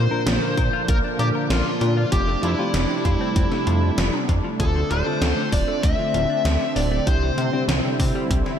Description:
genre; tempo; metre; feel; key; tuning
synthwave; 97 BPM; 4/4; straight; F major; A4 = 438 Hz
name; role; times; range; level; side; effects
dark smooth lead guitar; melody; 0.0-7.6 s; E4 to E5; -26 LUFS; left 1 dB; overdrive, analog delay
lush unison pad; sustained chords; 0.0-8.6 s; C3 to E4; -26 LUFS; right 1 dB; chorus, sidechain pumping
direct-recorded clean electric guitar; riff; 0.0-8.5 s; C3 to Bb4; -33 LUFS; left 4 dB; wide subtle chorus, ping-pong delay
mellow FM electric piano; stabs; 0.0-8.6 s; Bb2 to Bb4; -30 LUFS; left 3 dB; chorus, tape echo
chorused synth bass; bass; 0.0-8.4 s; D1 to C3; -22 LUFS; equal; sidechain pumping
gated 80s digital drum machine; drums; 0.3-8.6 s; hi-hat, snare drum; -28 LUFS; equal; gated reverb, gated reverb snare, overdrive
electronic kick drum; drums; 0.6-8.4 s; none; -23 LUFS; equal; none
room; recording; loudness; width
moderate lush hall reverb, RT60 2.7 s; dreamy mix soaked in reverb; -19 LUFS; side -8 dB against mid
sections
0.0-8.6 A section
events
none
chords
0.0 Bb; 2.1 Fadd9; 4.6 Dm7; 7.1 Cadd9

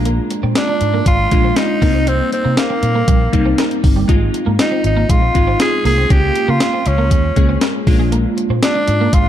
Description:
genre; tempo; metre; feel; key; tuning
1980s-style pop; 119 BPM; 4/4; straight; unclear; A4 = 440 Hz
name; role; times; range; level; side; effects
glassy digital keys; accompaniment; 0.0-9.3 s; G3 to Bb5; -20 LUFS; left 1 dB; chorus
twelve-string electric guitar; riff; 0.0-9.3 s; G3 to D4; -24 LUFS; right 5 dB; ensemble chorus
vintage muted fingered electric bass; bass; 0.0-9.3 s; G1 to Db3; -17 LUFS; equal; none
clean 12-bit digital drum machine; drums; 0.1-9.2 s; hi-hat, kick drum, snare drum; -16 LUFS; equal; none
raspy tenor saxophone; melody; 0.6-9.3 s; Bb3 to Ab4; -18 LUFS; equal; none
room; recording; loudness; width
light reverb; dark, warm production; -12 LUFS; side -11 dB against mid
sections
0.0-9.3 A section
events
none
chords
0.0 Bb7; 1.8 Cm7; 4.1 Ab6; 6.1 Db6; 7.9 Bb7

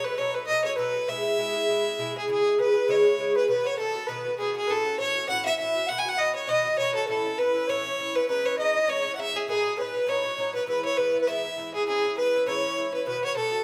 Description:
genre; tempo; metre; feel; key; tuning
celtic folk, Celtic reel; 200 BPM; 4/4; swing 56% on 8ths; unclear; A4 = 439 Hz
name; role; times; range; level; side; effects
clear fiddle; melody; 0.0-13.6 s; G#4 to G#5; -28 LUFS; equal; none
bright wooden flute; second line; 0.0-13.6 s; G#4 to F#5; -32 LUFS; equal; none
Irish bouzouki; accompaniment; 0.0-13.6 s; G#2 to A4; -32 LUFS; equal; none
room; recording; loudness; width
wet large studio reverb, RT60 1.2 s; band playing live in one room; -26 LUFS; mono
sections
0.0-2.3 A section; 2.3-11.9 B section; 11.9-13.6 B section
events
none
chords
0.0 B7; 1.1 E; 2.3 C#m; 3.5 B; 4.7 F#m7; 5.9 B; 7.1 A; 8.3 C#madd9; 9.5 B7; 10.7 E; 11.9 C#m; 13.1 B

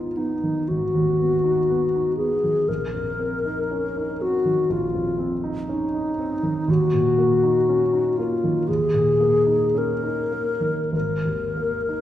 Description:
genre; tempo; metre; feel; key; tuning
classical, impressionist duo for alto flute and grand piano; 47-62 BPM; 4/4; rubato; G# dorian; A4 = 440 Hz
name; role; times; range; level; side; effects
wooden-headed alto flute; melody; 0.0-12.0 s; D#4 to A#4; -21 LUFS; left 2 dB; none
warm concert grand piano; accompaniment; 0.0-12.0 s; G#1 to D#4; -25 LUFS; right 3 dB; none
room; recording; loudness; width
wet recital hall reverb, RT60 1.6 s; heard from further back in the room; -20 LUFS; side -12 dB against mid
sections
0.0-12.0 A section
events
none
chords
0.0 G#m7; 2.7 A#madd9; 6.7 D#m7; 10.9 G#sus2

